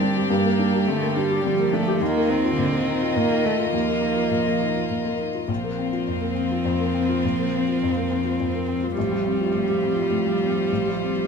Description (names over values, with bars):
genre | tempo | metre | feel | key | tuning
neoclassical piano and strings | 104 BPM | 3/4 | rubato | unclear | A4 = 440 Hz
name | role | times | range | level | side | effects
dark cello | second line | 0.0-11.3 s | D3 to G3 | -27 LUFS | right 6 dB | none
dark viola | accompaniment | 0.0-11.3 s | G3 to C4 | -25 LUFS | right 4 dB | none
felt-muted upright piano | accompaniment | 0.0-11.3 s | A1 to G4 | -25 LUFS | left 6 dB | none
rich chamber string section | sustained chords | 0.0-11.3 s | G3 to Eb5 | -29 LUFS | left 3 dB | none
room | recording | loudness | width
light reverb | minimal, uncompressed stereo recording | -20 LUFS | side -5 dB against mid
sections
0.0-11.3 A section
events
none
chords
0.0 Gm; 2.0 Ebsus2; 5.5 Bbsus2; 9.0 Fadd9/A